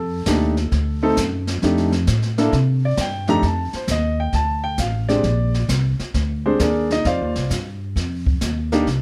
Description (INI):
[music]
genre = jazz piano trio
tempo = 133 BPM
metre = 4/4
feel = swing 67% on 8ths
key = F mixolydian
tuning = A4 = 440 Hz
[part]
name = warm concert grand piano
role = melody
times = 0.0-8.9 s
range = F2 to Bb5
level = -23 LUFS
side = equal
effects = none
[part]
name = upright bass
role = bass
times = 0.0-9.0 s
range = A1 to C3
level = -23 LUFS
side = equal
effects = none
[part]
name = jazz brush drum kit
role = drums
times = 0.3-9.0 s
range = brushed snare drum, hi-hat, kick drum, snare drum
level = -28 LUFS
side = equal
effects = none
[sound]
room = light reverb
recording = none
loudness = -20 LUFS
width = mono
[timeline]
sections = 0.0-3.4 A section; 3.4-9.0 A section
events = grand piano solo 0.0-9.0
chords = 0.0 F13; 0.7 D; 1.6 F13; 2.5 Csus2; 3.4 F13; 5.2 Bb9; 7.1 Fsus2